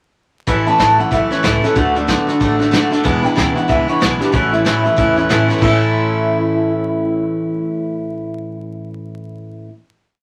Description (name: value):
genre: rockabilly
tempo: 187 BPM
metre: 4/4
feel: swing 61% on 8ths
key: A major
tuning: A4 = 439 Hz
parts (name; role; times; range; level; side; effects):
- picked steel-string acoustic guitar; accompaniment; 0.5-9.7 s; E2 to F#4; -20 LUFS; equal; none
- electric guitar through a small old amp; riff; 0.5-9.7 s; E2 to A4; -24 LUFS; equal; phaser
- upright bass; bass; 0.5-9.6 s; E1 to E2; -30 LUFS; equal; none
- soft brush drum kit; drums; 0.5-5.7 s; crash cymbal, hi-hat, kick drum, snare drum; -22 LUFS; equal; none
- electric guitar through a small old amp; melody; 0.7-9.6 s; D4 to A5; -20 LUFS; equal; phaser
room: moderate small room reverb, RT60 0.5 s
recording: vinyl crackle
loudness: -16 LUFS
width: mono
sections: 0.5-5.6 A section; 5.6-8.2 final chord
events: none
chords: 0.5 A; 1.8 D; 3.0 E7; 4.3 A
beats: | 0.48 0.80 1.12 1.44 | 1.76 2.08 2.41 2.73 | 3.05 3.37 3.69 4.01 | 4.34 4.66 4.98 5.30 | 5.62 5.94 6.26 6.58 | 6.90 7.22 7.54 7.86